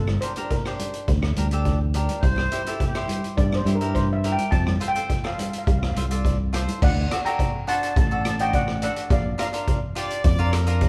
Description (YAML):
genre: calypso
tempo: 105 BPM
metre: 4/4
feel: straight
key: unclear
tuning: A4 = 438 Hz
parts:
  - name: steel pan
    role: melody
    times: 0.0-10.5 s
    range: A4 to Bb5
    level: -30 LUFS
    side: equal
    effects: none
  - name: fingered electric bass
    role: bass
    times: 0.0-10.9 s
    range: G1 to G2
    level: -26 LUFS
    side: equal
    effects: none
  - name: street-band drum kit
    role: drums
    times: 0.1-10.9 s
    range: crash cymbal, hi-hat, kick drum, rim click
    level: -26 LUFS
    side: equal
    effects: none
  - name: congas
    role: percussion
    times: 0.1-6.8 s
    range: none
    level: -35 LUFS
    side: equal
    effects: none
  - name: cavaquinho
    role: accompaniment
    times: 0.2-10.9 s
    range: D4 to D5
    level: -33 LUFS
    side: equal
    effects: none
  - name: clear horn section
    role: second line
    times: 2.2-3.2, 10.0-10.9 s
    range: G4 to D5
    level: -32 LUFS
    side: equal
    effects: none
room: moderate stone room reverb, RT60 1.2 s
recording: band playing live in one room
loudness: -23 LUFS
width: mono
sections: 0.0-6.8 A section; 6.8-10.9 B section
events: steel pan solo 0.0-6.8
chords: 0.0 Gm; 2.2 C; 4.5 F; 6.8 D; 9.1 Bb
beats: 0.51 1.09 1.66 | 2.23 2.81 3.38 3.95 | 4.53 5.10 5.67 6.24 | 6.81 7.39 7.96 8.53 | 9.10 9.67 10.24 10.81